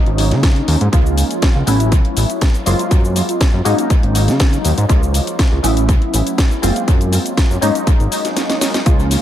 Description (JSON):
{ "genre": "filtered disco house", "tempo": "121 BPM", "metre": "4/4", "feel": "straight", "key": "unclear", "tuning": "A4 = 440 Hz", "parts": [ { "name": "funky polysynth comp", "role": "accompaniment", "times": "0.0-9.2 s", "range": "F3 to F4", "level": "-19 LUFS", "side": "equal", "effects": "chorus, phaser, sidechain pumping, low-pass filter, dub echo" }, { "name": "fat analog bass", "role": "bass", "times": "0.1-9.2 s", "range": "Gb1 to Db3", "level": "-16 LUFS", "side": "equal", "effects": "sidechain pumping, low-pass filter" }, { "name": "house drum kit", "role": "drums", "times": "0.1-9.2 s", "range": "hi-hat, shaker, snare drum", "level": "-22 LUFS", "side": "left 1 dB", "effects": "sidechain pumping on hats, sidechain pumping on perc, dub echo" }, { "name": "electronic kick drum", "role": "drums", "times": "0.4-9.0 s", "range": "none", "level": "-13 LUFS", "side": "equal", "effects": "none" } ], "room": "light reverb", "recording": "echo-heavy mix", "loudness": "-12 LUFS", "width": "side -11 dB against mid", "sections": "0.0-9.2 A section", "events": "filter sweep 0.0-9.2; drum fill 8.4-8.9", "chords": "0.0 Ab9sus4; 0.9 Db6; 1.7 A69; 2.7 Gbmaj9#11; 3.7 Ab9sus4; 4.9 Db6; 5.6 A69; 6.6 Gbmaj9#11; 7.6 Ab9sus4" }